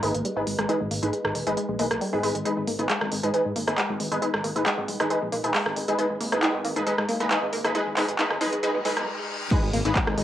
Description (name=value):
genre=driving peak-time techno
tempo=136 BPM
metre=4/4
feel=straight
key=G# minor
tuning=A4 = 439 Hz
part: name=analog pluck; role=riff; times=0.0-10.2 s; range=G3 to G#4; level=-30 LUFS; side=equal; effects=chorus, phaser, sidechain pumping, cassette tape, tape echo
part: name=rave stab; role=stabs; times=0.0-9.9 s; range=D#4 to B4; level=-27 LUFS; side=equal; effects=chorus, built-in reverb, phaser, sidechain pumping, cassette tape, tape echo
part: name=detuned saw bass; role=bass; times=0.0-10.2 s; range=D#1 to G#2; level=-33 LUFS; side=equal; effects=tube saturation, sidechain pumping
part: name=techno drum kit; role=drums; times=0.0-10.2 s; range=crash cymbal, handclaps, hi-hat, rim click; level=-28 LUFS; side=equal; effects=high-pass filter on snare, cassette tape, sidechain pumping on hats, high-pass filter on hats, sidechain pumping on cymbals, high-pass filter on cymbals, high-pass filter on room
part: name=warbly tape-like pad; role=texture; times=0.0-10.2 s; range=D#4 to D#5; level=-37 LUFS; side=equal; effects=none
part: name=riser, reverse cymbal and impact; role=sound effects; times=5.9-10.2 s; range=none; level=-39 LUFS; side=left 1 dB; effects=none
part: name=electronic kick drum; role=drums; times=9.5-10.0 s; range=none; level=-24 LUFS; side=equal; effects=cassette tape
room=wet studio reverb, RT60 0.7 s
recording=home recording on cassette, high-pass filter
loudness=-23 LUFS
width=side -12 dB against mid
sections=0.0-9.5 A section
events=build-up 0.0-9.5; filter sweep on synth arpeggio sound 0.0-9.5; filter sweep on synth stab 0.0-9.5; reverse cymbal 8.6-9.5; stop 9.1-9.5; impact 9.5-10.2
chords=0.0 G#m